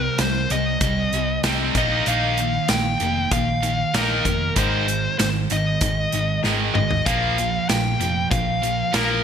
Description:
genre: hard rock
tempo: 96 BPM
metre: 4/4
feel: straight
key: unclear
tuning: A4 = 439 Hz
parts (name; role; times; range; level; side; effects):
- dark smooth lead guitar; melody; 0.0-9.2 s; Bb4 to G5; -24 LUFS; left 2 dB; overdrive, digital delay
- high-gain distorted guitar; riff; 0.0-9.2 s; Ab2 to Eb4; -25 LUFS; right 11 dB; distortion
- overdriven semi-hollow guitar; riff; 0.0-9.2 s; Ab2 to Eb4; -28 LUFS; left 13 dB; lush chorus
- hollow-body short-scale picked electric bass; bass; 0.0-9.2 s; F1 to C2; -26 LUFS; equal; none
- big rock drum kit; drums; 0.2-9.1 s; hi-hat, kick drum, snare drum, toms; -25 LUFS; equal; none
room: moderate lush hall reverb, RT60 2.6 s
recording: bright 1980s-style digital production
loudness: -18 LUFS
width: side -8 dB against mid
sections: 0.0-9.2 A section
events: drum fill 6.4-7.1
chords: 0.0 Cm; 1.8 Eb; 4.6 Ab; 7.1 Bb5

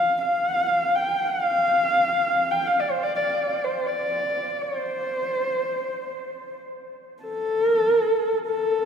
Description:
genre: mongolian traditional, Mongolian folk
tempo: free time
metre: none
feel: none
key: F gong mode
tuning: A4 = 440 Hz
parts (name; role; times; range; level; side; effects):
- dark horsehead fiddle; solo; 0.0-8.9 s; A4 to G5; -21 LUFS; equal; none
room: wet cathedral reverb, RT60 5.4 s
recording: recorded in a church or concert hall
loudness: -21 LUFS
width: side -7 dB against mid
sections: 0.0-8.9 A section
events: none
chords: none

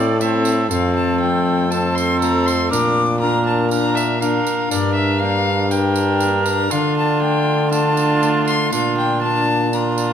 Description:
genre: classical, renaissance-style consort dance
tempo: 120 BPM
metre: 4/4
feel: straight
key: unclear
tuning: A4 = 444 Hz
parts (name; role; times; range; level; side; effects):
- warm violin; melody; 0.0-10.1 s; D5 to D6; -22 LUFS; left 3 dB; none
- warm cor anglais; second line; 0.0-10.1 s; F4 to Bb4; -22 LUFS; right 4 dB; none
- concert harp; accompaniment; 0.0-10.1 s; F2 to G4; -25 LUFS; left 8 dB; none
- warm viola; accompaniment; 0.0-10.1 s; C4 to D4; -23 LUFS; equal; none
- clear trombone; bass; 0.0-10.1 s; F2 to D3; -20 LUFS; right 1 dB; none
- tambourine; percussion; 0.2-10.1 s; none; -31 LUFS; right 8 dB; none
room: moderate recital hall reverb, RT60 1.5 s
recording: none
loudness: -15 LUFS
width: side -8 dB against mid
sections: 0.0-10.1 A section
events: none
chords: 0.0 Am; 0.7 F; 2.7 Bb; 4.7 Gm; 6.7 Dm; 8.7 Bb

